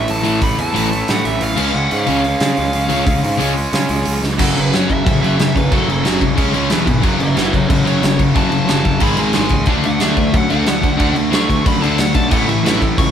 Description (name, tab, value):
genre	punk rock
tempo	182 BPM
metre	4/4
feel	straight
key	F# minor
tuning	A4 = 440 Hz
part	smooth overdriven lead guitar	melody	0.0-13.1 s	F#4 to C#6	-22 LUFS	right 1 dB	none
part	tight distorted guitar	riff	0.0-13.1 s	E2 to D4	-22 LUFS	right 1 dB	distortion
part	fuzz picked electric bass	bass	0.0-13.1 s	E1 to C#3	-21 LUFS	right 1 dB	overdrive
part	big rock drum kit	drums	0.1-13.1 s	crash cymbal, hi-hat, kick drum, snare drum	-18 LUFS	equal	none
part	overdriven electric guitar	riff	0.2-13.1 s	E2 to D4	-22 LUFS	right 5 dB	none
part	sludgy distorted guitar	riff	0.2-13.1 s	E2 to D4	-19 LUFS	left 6 dB	overdrive
room	moderate small room reverb, RT60 0.5 s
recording	band playing live in one room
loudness	-13 LUFS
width	side -9 dB against mid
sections	0.0-4.4 A section; 4.4-13.1 B section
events	half time 0.0-4.4; drum fill 4.2; lead electric guitar solo 4.4-13.1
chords	0.0 A5; 1.6 C#; 4.4 F#m; 6.4 C#5; 6.7 E5; 7.0 F#m; 9.0 G#5; 9.7 D; 12.3 A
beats	0.10 | 0.43 0.76 1.09 1.42 | 1.75 2.08 2.41 2.74 | 3.07 3.40 3.73 4.07 | 4.40 4.73 5.06 5.39 | 5.72 6.05 6.38 6.71 | 7.04 7.38 7.71 8.04 | 8.37 8.70 9.03 9.36 | 9.69 10.02 10.34 10.67 | 11.00 11.33 11.66 11.99 | 12.32 12.65 12.98